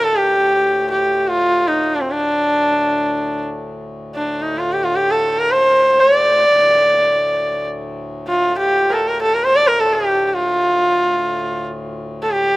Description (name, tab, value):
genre	indian classical, Hindustani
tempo	free time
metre	none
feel	none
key	D raga bhairavi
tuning	A4 = 441 Hz
part	clear sarangi	melody	0.0-12.6 s	C4 to D5	-14 LUFS	equal	none
part	hand-pumped harmonium	drone	0.0-12.6 s	D2 to A2	-29 LUFS	left 2 dB	none
room	little or no reverb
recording	recorded outdoors, with no room sound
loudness	-14 LUFS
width	side -20 dB against mid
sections	0.0-12.6 A section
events	none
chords	none